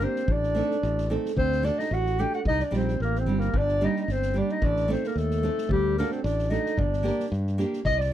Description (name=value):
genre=balkan folk, Balkan wedding band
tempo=111 BPM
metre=2/4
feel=straight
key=G harmonic minor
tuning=A4 = 439 Hz
part: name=dark clarinet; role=melody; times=0.0-8.1 s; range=G4 to G5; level=-28 LUFS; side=left 3 dB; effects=none
part: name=warm clarinet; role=second line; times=0.0-8.1 s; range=G3 to Eb5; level=-33 LUFS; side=right 10 dB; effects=none
part: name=nylon-string guitar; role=accompaniment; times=0.0-7.8 s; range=G3 to Bb4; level=-29 LUFS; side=right 3 dB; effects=none
part: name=modern bright fingered electric bass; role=bass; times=0.0-8.1 s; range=G1 to G2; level=-27 LUFS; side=equal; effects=none
part: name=soft-mallet drum kit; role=percussion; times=0.0-8.1 s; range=kick drum, snare drum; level=-33 LUFS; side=equal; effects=none
room=little or no reverb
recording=none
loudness=-23 LUFS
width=side -11 dB against mid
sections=0.0-7.8 A section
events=none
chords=0.3 Adim; 1.4 D; 2.5 Cm; 3.5 Gm; 4.6 Adim; 5.7 D; 6.8 Gm